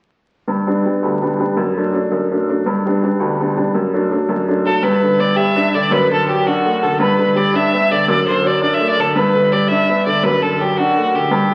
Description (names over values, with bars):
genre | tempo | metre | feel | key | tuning
celtic folk | 111 BPM (dotted quarters) | 6/8 | straight | G major | A4 = 445 Hz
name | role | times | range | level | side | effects
clear upright piano | accompaniment | 0.5-11.5 s | D2 to G4 | -18 LUFS | equal | none
clear fiddle | melody | 4.7-11.5 s | F#4 to E5 | -18 LUFS | equal | none
room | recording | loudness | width
wet large studio reverb, RT60 1.4 s | very old 78 rpm record, vinyl crackle | -16 LUFS | mono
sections
0.5-4.8 A section; 4.8-11.5 B section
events
none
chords
0.5 G; 1.6 D/F#; 2.7 G; 3.7 D/F#; 4.8 G; 5.9 D/F#; 7.0 G; 8.1 D/F#; 9.2 G; 10.2 D/F#